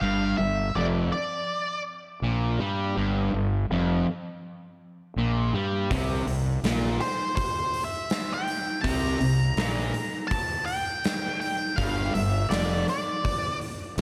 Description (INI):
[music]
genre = blues rock power trio and southern rock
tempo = 82 BPM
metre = 4/4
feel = straight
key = unclear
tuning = A4 = 440 Hz
[part]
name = octave-fuzz lead guitar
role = melody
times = 0.0-1.8, 7.0-13.6 s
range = C5 to Bb5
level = -32 LUFS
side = equal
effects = distortion, slapback echo, tape echo
[part]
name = distorted electric guitar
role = riff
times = 0.0-14.0 s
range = F2 to G3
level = -30 LUFS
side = equal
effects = distortion, slapback echo
[part]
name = fuzz fingered electric bass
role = bass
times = 0.0-14.0 s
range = F1 to G2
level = -31 LUFS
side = equal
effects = overdrive
[part]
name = big rock drum kit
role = drums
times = 5.9-14.0 s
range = hi-hat, kick drum, snare drum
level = -32 LUFS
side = equal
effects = none
[sound]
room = moderate concert hall reverb, RT60 2.3 s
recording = big arena sound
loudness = -27 LUFS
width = mono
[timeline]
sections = 0.0-14.0 A section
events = none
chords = 0.0 G5; 5.9 C5; 11.8 G5